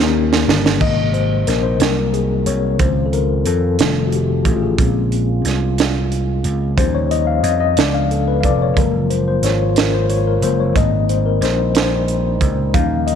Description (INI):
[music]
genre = slow gospel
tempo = 60 BPM (dotted quarters)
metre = 6/8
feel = straight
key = Ab major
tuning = A4 = 440 Hz
[part]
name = mellow tine electric piano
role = accompaniment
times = 0.0-13.2 s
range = C3 to F5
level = -19 LUFS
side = left 10 dB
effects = medium stereo tremolo
[part]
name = vintage slap bass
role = bass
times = 0.0-13.2 s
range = F1 to F2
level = -18 LUFS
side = right 1 dB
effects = none
[part]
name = crisp fusion drum kit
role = drums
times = 0.0-13.2 s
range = crash cymbal, hi-hat, kick drum, snare drum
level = -19 LUFS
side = right 4 dB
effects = none
[part]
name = mellow French horn section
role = sustained chords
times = 0.8-13.2 s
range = C3 to G4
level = -28 LUFS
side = right 12 dB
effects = none
[sound]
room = light reverb, studio reverb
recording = 1960s-style stereo with parts hard left and right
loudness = -14 LUFS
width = side -8 dB against mid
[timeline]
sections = 0.8-13.2 A section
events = drum fill 0.0-0.8; tine electric piano solo 0.8-13.2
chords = 0.0 Eb7; 0.8 Abmaj7; 1.8 Cm7b5; 2.8 Dbmaj7; 3.8 F7; 4.8 Bbm7; 6.8 Eb7; 7.8 Db7b9; 8.8 Gbmaj7; 10.8 Abmaj7